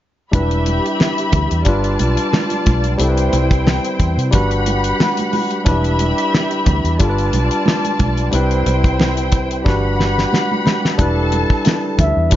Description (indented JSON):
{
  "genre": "lush 1970s-style soul",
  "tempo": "90 BPM",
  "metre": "4/4",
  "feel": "swing 54% on 16ths",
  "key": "E minor",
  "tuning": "A4 = 437 Hz",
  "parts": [
    { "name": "warm symphonic string section", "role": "second line", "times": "0.3-12.4 s", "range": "E4 to B5", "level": "-21 LUFS", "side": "left 1 dB", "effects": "none" },
    { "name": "barky tine electric piano", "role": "accompaniment", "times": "0.3-12.4 s", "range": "F#3 to B4", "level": "-20 LUFS", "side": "left 1 dB", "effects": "overdrive" },
    { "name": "vintage muted fingered electric bass", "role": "bass", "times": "0.3-12.4 s", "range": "E1 to C3", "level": "-18 LUFS", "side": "equal", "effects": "none" },
    { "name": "damped 70s drum kit", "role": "drums", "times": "0.3-12.4 s", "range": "hi-hat, kick drum, snare drum", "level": "-18 LUFS", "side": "equal", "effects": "none" },
    { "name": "congas", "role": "percussion", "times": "0.3-12.4 s", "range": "none", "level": "-25 LUFS", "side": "right 4 dB", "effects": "none" },
    { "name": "breathy flugelhorn", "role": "melody", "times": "12.0-12.3 s", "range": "E5", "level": "-18 LUFS", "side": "equal", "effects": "none" }
  ],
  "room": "light reverb, small room ambience",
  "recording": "nothing above 7.5 kHz",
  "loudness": "-14 LUFS",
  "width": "side -12 dB against mid",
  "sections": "0.3-11.0 A section; 11.0-12.4 B section",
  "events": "drum fill 9.7-11.0",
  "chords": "0.3 Em7; 1.7 G7; 3.0 Cmaj7; 4.3 Gmaj7; 5.7 Em7; 7.0 G7; 8.3 Cmaj7; 9.7 Gmaj7; 11.0 Em7",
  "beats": "| 0.33 1.00 1.67 2.33 | 3.00 3.67 4.33 5.00 | 5.67 6.33 7.00 7.66 | 8.33 8.99 9.66 10.32 | 10.99 11.66 12.32"
}